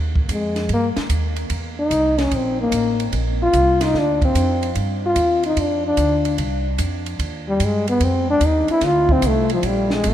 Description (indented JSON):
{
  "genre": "jazz, small-group swing and bop",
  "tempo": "148 BPM",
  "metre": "4/4",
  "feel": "swing 67% on 8ths",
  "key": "unclear",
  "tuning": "A4 = 440 Hz",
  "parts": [
    { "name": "upright bass", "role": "bass", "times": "0.0-10.1 s", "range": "Ab1 to G2", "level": "-22 LUFS", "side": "right 1 dB", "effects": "none" },
    { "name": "compact cocktail drum kit", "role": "drums", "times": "0.2-10.1 s", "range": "hi-hat, kick drum, ride cymbal, snare drum", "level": "-26 LUFS", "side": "right 1 dB", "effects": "none" },
    { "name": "breathy trombone", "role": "melody", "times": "0.3-10.1 s", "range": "F3 to F4", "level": "-19 LUFS", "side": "left 1 dB", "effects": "none" }
  ],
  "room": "moderate cathedral reverb, RT60 5.5 s",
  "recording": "in a vast, echoing space",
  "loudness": "-17 LUFS",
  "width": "side -11 dB against mid",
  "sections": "0.0-10.1 A section",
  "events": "trombone solo 0.0-10.1",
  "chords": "0.0 Eb; 1.5 C13; 3.1 Bb; 4.8 G5; 6.4 Cm; 8.0 F5; 9.6 Absus2",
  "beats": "0.29 0.70 1.10 | 1.51 1.91 2.32 2.73 | 3.13 3.54 3.94 4.35 | 4.76 5.16 5.57 5.97 | 6.38 6.79 7.19 7.60 | 8.01 8.41 8.82 9.23 | 9.63 10.04"
}